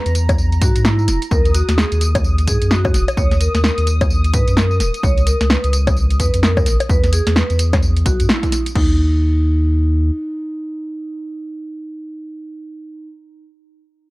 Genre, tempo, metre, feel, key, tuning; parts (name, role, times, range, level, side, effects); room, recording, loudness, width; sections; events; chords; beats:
UK garage, two-step garage; 129 BPM; 4/4; swing 60% on 16ths; A4 = 440 Hz
vibraphone with medium hard mallets; melody; 0.0-13.1 s; Eb4 to Db5; -24 LUFS; right 1 dB; dub echo
warm analog pad; sustained chords; 0.0-8.8 s; Bb5 to Eb6; -29 LUFS; left 1 dB; chorus, sidechain pumping
saturated sub bass; bass; 0.1-10.1 s; Eb1 to G#2; -16 LUFS; equal; tube saturation
punchy analog drum machine; drums; 0.1-8.9 s; bongos, crash cymbal, hi-hat, snare drum, tambourine; -20 LUFS; equal
electronic kick drum; drums; 0.3-8.9 s; -18 LUFS; equal
little or no reverb; -13 LUFS; side -20 dB against mid
0.0-8.8 A section; 8.8-12.5 B section
drop 0.0-8.8; band accent 8.3
0.0 E; 1.3 Ebm; 5.0 Db; 6.9 Emaj7(no3); 8.8 N.C.
0.38 0.85 | 1.31 1.78 2.24 2.71 | 3.17 3.64 4.10 4.57 | 5.03 5.50 5.96 6.43 | 6.89 7.36 7.83 8.29 | 8.76 9.22 9.69 10.15 | 10.62 11.08 11.55 12.01